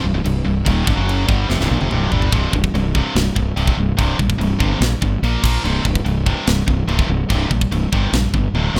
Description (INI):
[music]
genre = heavy metal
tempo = 144 BPM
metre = 4/4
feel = straight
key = C minor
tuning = A4 = 440 Hz
[part]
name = tight distorted guitar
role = riff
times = 0.0-8.8 s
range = C2 to Bb3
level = -24 LUFS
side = equal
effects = distortion
[part]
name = fuzz fingered electric bass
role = bass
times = 0.0-8.8 s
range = C1 to Bb1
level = -21 LUFS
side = equal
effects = overdrive
[part]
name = tight metal drum kit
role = drums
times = 0.3-8.8 s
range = china cymbal, crash cymbal, kick drum, snare drum, toms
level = -24 LUFS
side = equal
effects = none
[sound]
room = studio ambience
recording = rough home demo mix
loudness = -18 LUFS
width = mono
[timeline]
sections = 0.0-2.3 A section; 2.3-8.8 B section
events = drum fill 1.5-2.3, 8.5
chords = 0.0 Cm; 2.3 C5; 5.2 Bb5; 5.6 C5